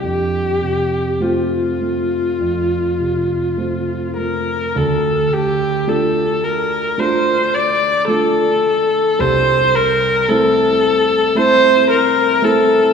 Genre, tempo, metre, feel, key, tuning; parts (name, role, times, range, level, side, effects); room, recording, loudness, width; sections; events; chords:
classical, romantic duo for viola and grand piano; 50-57 BPM; 4/4; rubato; F major, D minor from 4.8 s; A4 = 440 Hz
rich viola; melody; 0.0-12.9 s; F4 to D5; -15 LUFS; left 1 dB
dark grand piano; accompaniment; 0.0-12.9 s; C2 to F4; -20 LUFS; right 2 dB
wet concert hall reverb, RT60 2.3 s; minimal, uncompressed stereo recording; -14 LUFS; side -6 dB against mid
0.0-4.8 A section; 4.8-12.9 B section
0.0 F; 4.8 Dm; 9.2 Am/C